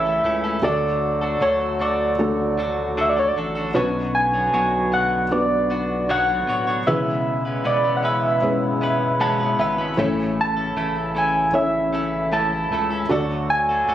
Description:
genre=pop ballad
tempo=77 BPM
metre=4/4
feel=straight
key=A major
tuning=A4 = 440 Hz
part: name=soft struck synth lead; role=melody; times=0.0-13.9 s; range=C#5 to A5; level=-22 LUFS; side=right 1 dB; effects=chorus
part: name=felt-muted upright piano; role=accompaniment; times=0.0-13.9 s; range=A2 to A5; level=-25 LUFS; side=equal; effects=none
part: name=mellow accordion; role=sustained chords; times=0.0-13.9 s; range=C#3 to F#4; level=-28 LUFS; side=equal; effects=none
part: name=direct-recorded clean electric guitar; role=arpeggios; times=0.0-13.9 s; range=E2 to C#5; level=-27 LUFS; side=left 2 dB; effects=none
part: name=saturated sub bass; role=bass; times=0.0-13.9 s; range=D1 to D2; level=-29 LUFS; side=equal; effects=none
room=moderate recital hall reverb, RT60 1.4 s, small room reverb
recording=recorded on a phone in the room, studio ambience, compression, faint mains hum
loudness=-18 LUFS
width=side -11 dB against mid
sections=0.0-13.9 A section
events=felt piano fill 8.8-10.0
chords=0.0 A; 0.6 D; 3.8 Bmadd9; 6.9 E6; 10.0 A; 13.1 D

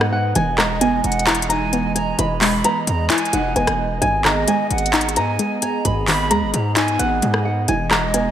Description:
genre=hip hop, trap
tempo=131 BPM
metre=4/4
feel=half-time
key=G# minor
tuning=A4 = 440 Hz
part: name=flamenco guitar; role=melody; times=0.0-8.3 s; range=F#5 to B5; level=-22 LUFS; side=equal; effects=low-pass filter, analog delay
part: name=warbly dusty pluck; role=accompaniment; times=0.0-8.3 s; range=G#2 to E4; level=-24 LUFS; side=equal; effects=chorus, low-pass filter
part: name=hollow soft pad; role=sustained chords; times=0.0-8.3 s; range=E3 to D#5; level=-26 LUFS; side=right 2 dB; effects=chorus
part: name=distorted 808-style bass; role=bass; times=0.0-8.3 s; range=E1 to G#2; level=-24 LUFS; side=equal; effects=distortion
part: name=trap drum kit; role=drums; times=0.0-8.2 s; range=handclaps, hi-hat, rim click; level=-22 LUFS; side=equal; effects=none
part: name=concert flute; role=second line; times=0.6-8.3 s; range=D#5 to B5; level=-27 LUFS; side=right 4 dB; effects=analog delay
room=moderate lush hall reverb, RT60 1.8 s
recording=dreamy mix soaked in reverb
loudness=-16 LUFS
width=side -10 dB against mid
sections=0.0-8.3 A section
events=none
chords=0.4 Emaj7; 4.0 G#m; 7.7 Emaj7

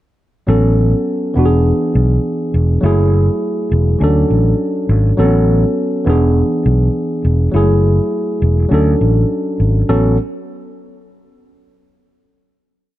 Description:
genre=afrobeats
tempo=102 BPM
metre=4/4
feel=swing 55% on 16ths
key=A major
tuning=A4 = 444 Hz
part: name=tine electric piano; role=accompaniment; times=0.5-10.2 s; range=E3 to A4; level=-16 LUFS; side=equal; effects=none
part: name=fingered electric bass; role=bass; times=0.5-10.2 s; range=E1 to D2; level=-13 LUFS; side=equal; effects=none
room=digital ambience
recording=none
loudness=-12 LUFS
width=side -14 dB against mid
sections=0.5-9.9 chorus; 9.9-12.2 final chord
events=none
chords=0.5 A69; 1.4 E7; 2.8 F#m9; 4.0 Dmaj7; 5.2 A69; 6.1 E7; 7.5 F#m9; 8.7 Dmaj7; 9.9 A69

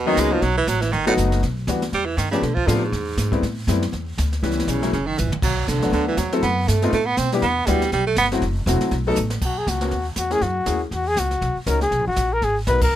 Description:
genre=jazz, small-group swing and bop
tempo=240 BPM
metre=4/4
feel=swing 58% on 8ths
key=E minor, G# minor from 9.4 s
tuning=A4 = 439 Hz
part: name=clear baritone saxophone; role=second line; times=0.0-8.3 s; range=G#2 to C4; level=-22 LUFS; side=right 5 dB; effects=none
part: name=upright bass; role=bass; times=0.0-13.0 s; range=E1 to B2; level=-24 LUFS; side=equal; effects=none
part: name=warm baby grand piano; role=accompaniment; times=0.1-12.8 s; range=E3 to A#4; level=-23 LUFS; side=left 4 dB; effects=none
part: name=jazz brush drum kit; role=drums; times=0.2-13.0 s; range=brushed snare drum, crash cymbal, hi-hat, kick drum, ride cymbal, snare drum, toms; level=-28 LUFS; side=equal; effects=none
part: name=dark trumpet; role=melody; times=9.5-13.0 s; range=F#4 to B4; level=-22 LUFS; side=left 2 dB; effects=none
room=little or no reverb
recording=close, detailed microphones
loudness=-19 LUFS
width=side -12 dB against mid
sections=0.0-1.4 A section; 1.4-9.4 A section; 9.4-13.0 B section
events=baritone saxophone solo 0.0-9.4; drum fill 5.2, 9.2; band accent 12.8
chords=0.4 B7; 1.4 Em7; 2.4 Bm7b5; 2.9 E; 3.4 Am7; 4.4 C#m7b5; 4.9 F#7; 5.4 Bm7; 6.4 F#dim; 6.9 Am11; 7.4 Em7; 8.4 F#m7b5; 8.9 B7; 9.4 G#m11; 10.4 F#9; 11.4 Bmaj9; 12.4 G#m7

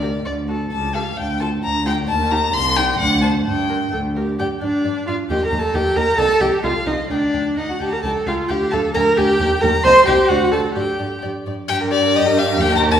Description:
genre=quick classical-period movement for string quartet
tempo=131 BPM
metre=2/4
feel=rubato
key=G minor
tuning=A4 = 435 Hz
part: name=dark violin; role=melody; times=0.0-13.0 s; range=D5 to C6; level=-22 LUFS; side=left 5 dB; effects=none
part: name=warm violin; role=second line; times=0.0-13.0 s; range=G4 to C6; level=-24 LUFS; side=left 2 dB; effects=none
part: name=rich viola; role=accompaniment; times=0.0-13.0 s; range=D4 to C5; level=-18 LUFS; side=right 1 dB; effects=none
part: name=warm cello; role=bass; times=0.0-13.0 s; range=C2 to G2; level=-22 LUFS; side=right 2 dB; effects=none
room=wet recital hall reverb, RT60 1.6 s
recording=recorded in a church or concert hall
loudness=-16 LUFS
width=side -9 dB against mid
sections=0.0-4.4 A section; 4.4-11.7 A section; 11.7-13.0 A section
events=none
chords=0.3 D; 0.7 A7/C#; 1.2 Dm; 2.1 Eb5; 2.5 Cm; 3.0 D; 3.5 G5; 5.3 Eb; 6.2 Cm; 7.1 G5/D; 7.6 D; 8.0 A7/C#; 8.5 D5; 9.0 Bb/D; 9.4 Eb; 9.9 Cm; 10.3 D; 10.8 G5

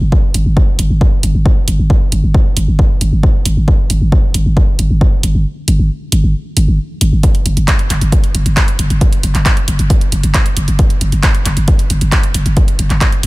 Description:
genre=driving peak-time techno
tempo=135 BPM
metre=4/4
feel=straight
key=unclear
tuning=A4 = 443 Hz
part: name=growling 808-style bass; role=bass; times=0.0-13.3 s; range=F#1 to G1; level=-13 LUFS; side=equal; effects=tube saturation, sidechain pumping, low-pass filter
part: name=electronic kick drum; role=drums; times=0.1-13.1 s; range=none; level=-12 LUFS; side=equal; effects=studio reverb
part: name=techno drum kit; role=drums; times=0.3-13.3 s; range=handclaps, hi-hat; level=-18 LUFS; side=right 1 dB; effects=overdrive, sidechain pumping on hats, studio reverb
room=little or no reverb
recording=none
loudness=-10 LUFS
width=side -21 dB against mid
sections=0.0-13.3 A section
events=kick drops out 5.5-7.2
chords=none

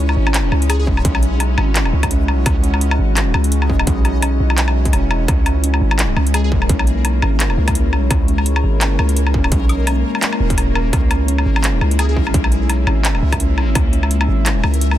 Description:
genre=half-time drum and bass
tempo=170 BPM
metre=4/4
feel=swing 57% on 16ths, half-time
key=C# dorian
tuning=A4 = 441 Hz
part: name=deep dark ambient pad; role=sustained chords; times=0.0-15.0 s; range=G#3 to E5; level=-24 LUFS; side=left 3 dB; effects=chorus, built-in reverb, sidechain pumping
part: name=felt-muted upright piano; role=arpeggios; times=0.0-15.0 s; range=C#4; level=-27 LUFS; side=right 2 dB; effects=digital delay
part: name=long sustained 808-style bass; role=bass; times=0.0-15.0 s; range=D#1 to C#2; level=-16 LUFS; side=equal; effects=none
part: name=backwards swelling texture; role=texture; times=0.0-15.0 s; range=A#3 to D#5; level=-28 LUFS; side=left 2 dB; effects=built-in reverb
part: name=drum and bass drum kit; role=drums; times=0.1-15.0 s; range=handclaps, hi-hat, woodblock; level=-22 LUFS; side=left 2 dB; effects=none
part: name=plucky unison lead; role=melody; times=0.7-0.8, 6.3-6.5, 12.0-12.1 s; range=G#4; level=-32 LUFS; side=equal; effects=none
part: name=electronic kick drum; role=drums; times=0.9-13.8 s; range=none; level=-18 LUFS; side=equal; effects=distortion
room=little or no reverb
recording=dense, heavily limited modern master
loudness=-14 LUFS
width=side -12 dB against mid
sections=0.0-15.0 A section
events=none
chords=0.0 C#m

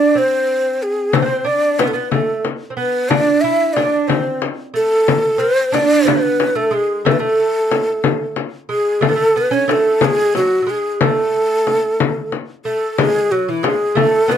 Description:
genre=Persian modal ensemble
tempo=61 BPM (dotted quarters)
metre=6/8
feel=straight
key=A avaz esfahan, A dastgah mahur from 9.0 s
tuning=A4 = 440 Hz
part: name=breathy ney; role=melody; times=0.0-14.4 s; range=E4 to E5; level=-16 LUFS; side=equal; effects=none
part: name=lute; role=second line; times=0.0-14.4 s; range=E3 to E4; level=-21 LUFS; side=right 6 dB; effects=none
part: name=frame drum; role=percussion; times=1.1-14.4 s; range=none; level=-18 LUFS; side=left 7 dB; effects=none
room=light reverb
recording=dark, warm production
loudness=-14 LUFS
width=side -9 dB against mid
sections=0.0-9.0 A section; 9.0-14.4 B section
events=none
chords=none

